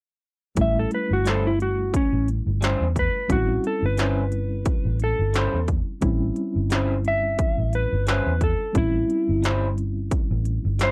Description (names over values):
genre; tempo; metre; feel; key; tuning
straight-eighth soul blues; 88 BPM; 4/4; swing 56% on 16ths; A mixolydian; A4 = 440 Hz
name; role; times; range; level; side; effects
clean lap steel guitar; melody; 0.6-10.9 s; C#4 to E5; -27 LUFS; equal; none
mellow reed electric piano; accompaniment; 0.6-10.9 s; G3 to E4; -32 LUFS; equal; fast tremolo
vintage muted fingered electric bass; bass; 0.6-10.9 s; G1 to E2; -26 LUFS; equal; none
industrial drum kit; drums; 0.6-10.9 s; hi-hat, kick drum, snare drum; -28 LUFS; equal; none
electric guitar through a small old amp; stabs; 1.2-10.9 s; G3 to B#4; -29 LUFS; equal; subtle chorus
room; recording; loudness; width
little or no reverb; dry, close 1970s-style studio recording; -23 LUFS; mono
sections
0.6-10.9 A section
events
electric slide guitar solo 0.6-10.9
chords
0.6 A7#9